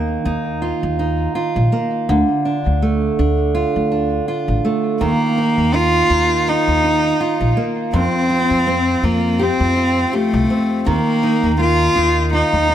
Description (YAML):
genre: folktronica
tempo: 82 BPM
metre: 4/4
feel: swing 56% on 16ths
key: Eb lydian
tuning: A4 = 437 Hz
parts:
  - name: fingerpicked steel-string acoustic guitar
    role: arpeggios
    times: 0.0-12.7 s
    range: F2 to G4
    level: -19 LUFS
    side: right 2 dB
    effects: tape echo
  - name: upright bass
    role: bass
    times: 0.0-12.7 s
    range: A1 to F2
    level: -20 LUFS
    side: equal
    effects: none
  - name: warm cello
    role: melody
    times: 5.0-12.7 s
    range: A3 to F4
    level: -16 LUFS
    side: equal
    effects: none
room: light reverb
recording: none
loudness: -15 LUFS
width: side -10 dB against mid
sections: 0.0-12.7 A section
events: none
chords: 0.0 Ebsus2; 2.1 Dm; 5.0 Ebsus2; 7.9 Fsus2; 10.9 Ebsus2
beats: 0.62 1.35 | 2.08 2.81 3.55 4.28 | 5.01 5.74 6.47 7.20 | 7.94 8.67 9.40 10.13 | 10.86 11.59 12.33